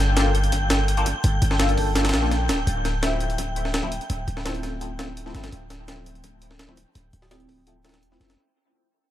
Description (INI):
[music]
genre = drum and bass, jungle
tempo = 168 BPM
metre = 4/4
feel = straight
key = unclear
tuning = A4 = 440 Hz
[part]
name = warm 808-style bass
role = bass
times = 0.0-8.4 s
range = D1 to Bb1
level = -24 LUFS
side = equal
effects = none
[part]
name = wind-like tuned noise texture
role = texture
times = 0.0-8.4 s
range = G5 to G6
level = -31 LUFS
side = left 1 dB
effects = built-in reverb
[part]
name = band-passed chord stab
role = stabs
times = 0.2-8.3 s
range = F3 to A4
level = -30 LUFS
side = left 3 dB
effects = phaser, analog chorus, vintage 12-bit sampler grit, dub echo
[part]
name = breakbeat sampler-style drum kit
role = drums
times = 0.2-8.4 s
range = hi-hat, kick drum, snare drum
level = -26 LUFS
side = equal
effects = high-pass filter on hats, high-pass filter on kick, high-pass filter on snare, analog delay
[sound]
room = light reverb, digital ambience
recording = echo-heavy mix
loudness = -21 LUFS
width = side -12 dB against mid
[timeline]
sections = 0.0-8.4 A section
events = fade-out 0.0-8.4; filter sweep on synth stab 0.0-8.4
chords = 0.0 Gm9; 2.7 Dm9